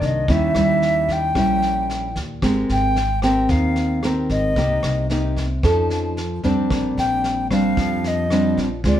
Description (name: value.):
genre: bossa nova.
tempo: 112 BPM.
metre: 4/4.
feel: straight.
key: unclear.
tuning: A4 = 439 Hz.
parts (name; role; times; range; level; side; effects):
reedy concert flute; melody; 0.0-9.0 s; D5 to G5; -22 LUFS; left 1 dB; plate reverb.
nylon-string guitar; accompaniment; 0.0-9.0 s; G2 to Bb4; -20 LUFS; equal; none.
upright bass; bass; 0.0-9.0 s; Ab1 to F2; -24 LUFS; equal; none.
vintage brush drum kit; drums; 0.0-9.0 s; kick drum, rim click, snare drum; -28 LUFS; equal; none.
room: moderate studio reverb, RT60 0.7 s.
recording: heard from further back in the room.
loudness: -17 LUFS.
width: side -11 dB against mid.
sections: 0.0-9.0 A section.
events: none.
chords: 0.3 Eb7b9; 2.4 Abmaj9; 4.6 Cm7; 5.6 F7b13; 6.7 Bb69.